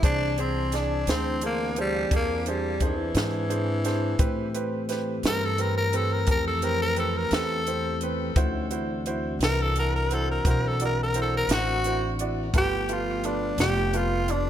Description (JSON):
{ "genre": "slow blues", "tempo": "58 BPM (dotted quarters)", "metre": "12/8", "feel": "straight", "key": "unclear", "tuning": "A4 = 440 Hz", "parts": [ { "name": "growling tenor saxophone", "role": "melody", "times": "0.0-14.5 s", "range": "E3 to Bb4", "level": "-27 LUFS", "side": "left 1 dB", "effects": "ping-pong delay" }, { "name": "bright upright piano", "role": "accompaniment", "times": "0.0-14.5 s", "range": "C4 to D5", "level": "-32 LUFS", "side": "right 4 dB", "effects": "none" }, { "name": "mellow tonewheel organ", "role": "sustained chords", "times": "0.0-14.5 s", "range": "E3 to G#5", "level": "-34 LUFS", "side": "left 1 dB", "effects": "slow rotary speaker" }, { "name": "upright bass", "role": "bass", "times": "0.0-14.5 s", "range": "F1 to A2", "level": "-29 LUFS", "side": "left 1 dB", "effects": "none" }, { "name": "compact cocktail drum kit", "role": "drums", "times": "0.0-14.4 s", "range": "hi-hat, kick drum, snare drum", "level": "-27 LUFS", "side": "equal", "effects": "none" } ], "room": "moderate plate reverb, RT60 1.9 s, studio ambience", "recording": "dreamy mix soaked in reverb", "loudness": "-23 LUFS", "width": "side -10 dB against mid", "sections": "0.0-14.5 A section", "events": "tenor saxophone solo 0.0-14.5", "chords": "0.0 Eaug7; 4.2 Am7; 8.4 D9; 12.5 G9" }